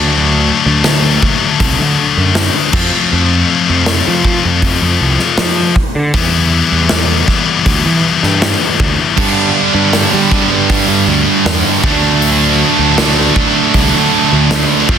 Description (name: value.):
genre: quiet-loud alternative rock.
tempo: 79 BPM.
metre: 4/4.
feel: straight.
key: unclear.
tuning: A4 = 440 Hz.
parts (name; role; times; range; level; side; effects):
scooped high-gain guitar; riff; 0.0-15.0 s; G2 to F4; -13 LUFS; left 6 dB; distortion.
fuzz picked electric bass; bass; 0.0-15.0 s; C2 to G3; -15 LUFS; right 1 dB; overdrive.
big rock drum kit; drums; 0.8-15.0 s; crash cymbal, hi-hat, kick drum, snare drum; -17 LUFS; equal; none.
high-gain distorted guitar; riff; 9.2-15.0 s; F2 to D4; -13 LUFS; right 17 dB; distortion.
room: studio ambience.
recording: dense, heavily limited modern master.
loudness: -9 LUFS.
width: side -8 dB against mid.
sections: 0.0-15.0 A section.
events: none.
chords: 0.0 D; 2.7 F; 6.1 Em; 11.8 D.